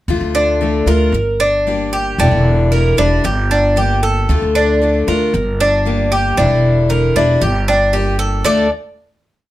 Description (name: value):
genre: latin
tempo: 115 BPM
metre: 4/4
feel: straight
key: D minor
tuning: A4 = 440 Hz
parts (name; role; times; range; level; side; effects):
- picked steel-string acoustic guitar; accompaniment; 0.1-8.7 s; D3 to G4; -19 LUFS; left 5 dB; none
- upright bass; bass; 0.1-8.7 s; E1 to D2; -16 LUFS; equal; none
- Cuban tres; arpeggios; 0.3-8.7 s; D4 to D5; -15 LUFS; right 1 dB; none
room: light reverb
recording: none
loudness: -12 LUFS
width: side -15 dB against mid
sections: 0.1-8.5 montuno (vamp); 8.5-9.5 final chord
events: none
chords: 0.1 Dm; 1.1 Gm; 2.2 Em7b5; 3.2 Gm; 4.3 Dm; 5.3 Gm; 6.4 Em7b5; 7.4 Gm; 8.5 Dm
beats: | 0.09 0.61 1.14 1.67 | 2.19 2.72 3.25 3.77 | 4.29 4.82 5.34 5.86 | 6.38 6.90 7.42 7.93 | 8.45